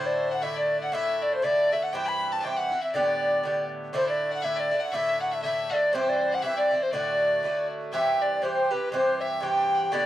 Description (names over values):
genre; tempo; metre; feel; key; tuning
celtic folk; 120 BPM; 2/4; swing 56% on 8ths; unclear; A4 = 441 Hz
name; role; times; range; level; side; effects
wooden flute; melody; 0.0-10.1 s; B4 to B5; -26 LUFS; equal; none
bright fiddle; second line; 0.0-10.1 s; B4 to B5; -31 LUFS; left 4 dB; none
Irish bouzouki; accompaniment; 0.0-10.1 s; G2 to G4; -29 LUFS; right 3 dB; none
room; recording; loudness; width
wet booth ambience, RT60 0.2 s; dry, close 1970s-style studio recording; -23 LUFS; side -13 dB against mid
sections
0.0-7.9 A section; 7.9-10.1 B section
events
none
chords
0.0 Dsus2; 1.9 C; 2.9 Gadd9; 3.9 Dsus2; 5.9 C; 6.9 D; 7.9 C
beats
0.42 | 0.93 1.43 | 1.93 2.43 | 2.93 3.44 | 3.94 4.44 | 4.94 5.44 | 5.94 6.43 | 6.93 7.43 | 7.93 8.43 | 8.92 9.42 | 9.92